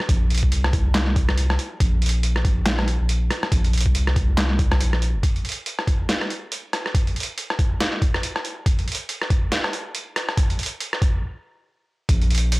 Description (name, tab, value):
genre	deep dubstep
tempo	140 BPM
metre	4/4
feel	swing 58% on 16ths, half-time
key	unclear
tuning	A4 = 440 Hz
part	trip hop sampler-style drum kit	drums	0.0-12.6 s	handclaps, hi-hat, rim click, snare drum	-25 LUFS	equal	high-pass filter on hats, high-pass filter on snare, high-pass filter on room
part	soft dub sub bass	bass	0.1-5.2, 12.1-12.6 s	F1 to C2	-20 LUFS	equal	tube saturation
part	electronic kick drum	drums	0.1-12.2 s	none	-21 LUFS	equal	none
room	light reverb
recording	none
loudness	-19 LUFS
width	side -22 dB against mid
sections	0.0-5.2 A section; 5.2-12.1 B section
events	break 4.8-5.2; build-up 5.2-12.1; stop 11.2-12.1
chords	none